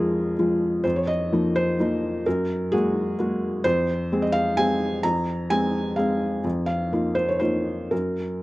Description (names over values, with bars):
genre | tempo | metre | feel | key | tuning
neoclassical minimalist piano | 128 BPM | 3/4 | rubato | F phrygian | A4 = 436 Hz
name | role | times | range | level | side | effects
felt-muted upright piano | solo | 0.0-8.4 s | F2 to Bb5 | -21 LUFS | equal | none
room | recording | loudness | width
little or no reverb | recorded outdoors, with no room sound | -21 LUFS | side -18 dB against mid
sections
0.0-8.4 A section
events
none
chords
0.0 Fm; 0.8 Bbsus4/F; 2.3 Gbadd9; 3.6 Fm; 6.4 Bbsus4/F; 7.9 Gb